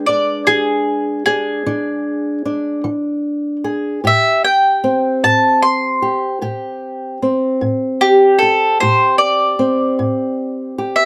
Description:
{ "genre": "acoustic country blues, solo or duo", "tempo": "50 BPM (dotted quarters)", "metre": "12/8", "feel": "straight", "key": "A minor", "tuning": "A4 = 440 Hz", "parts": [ { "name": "mandolin", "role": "melody", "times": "0.0-11.1 s", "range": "G4 to C6", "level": "-16 LUFS", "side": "equal", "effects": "none" }, { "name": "fingerpicked old ladder-braced acoustic guitar", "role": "accompaniment", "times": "0.0-11.1 s", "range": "A2 to B4", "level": "-21 LUFS", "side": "equal", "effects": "none" } ], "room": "light reverb", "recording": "close, detailed microphones", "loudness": "-16 LUFS", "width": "mono", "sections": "0.0-4.0 A section; 4.0-11.1 B section", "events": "mandolin solo 4.0-11.1", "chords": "0.0 E7; 4.0 Am7", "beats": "0.47 1.66 2.85 | 4.04 5.23 6.42 7.61 | 8.79 9.98" }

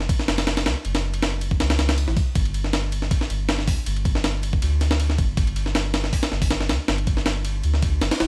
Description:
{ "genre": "drum and bass, jungle", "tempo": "159 BPM", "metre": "4/4", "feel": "straight", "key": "unclear", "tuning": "A4 = 439 Hz", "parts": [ { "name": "soft dub sub bass", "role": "bass", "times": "0.0-8.3 s", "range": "D1 to D2", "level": "-26 LUFS", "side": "equal", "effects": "tube saturation" }, { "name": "breakbeat sampler-style drum kit", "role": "drums", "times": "0.0-8.3 s", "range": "hi-hat, kick drum, ride cymbal, snare drum", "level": "-25 LUFS", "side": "equal", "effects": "studio reverb" } ], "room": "little or no reverb", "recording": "vinyl crackle", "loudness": "-23 LUFS", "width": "mono", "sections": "0.0-8.3 A section", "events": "none", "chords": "none", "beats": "0.09 0.47 | 0.85 1.22 1.60 1.98 | 2.36 2.73 3.11 3.49 | 3.87 4.24 4.62 5.00 | 5.38 5.75 6.13 6.51 | 6.88 7.26 7.64 8.02" }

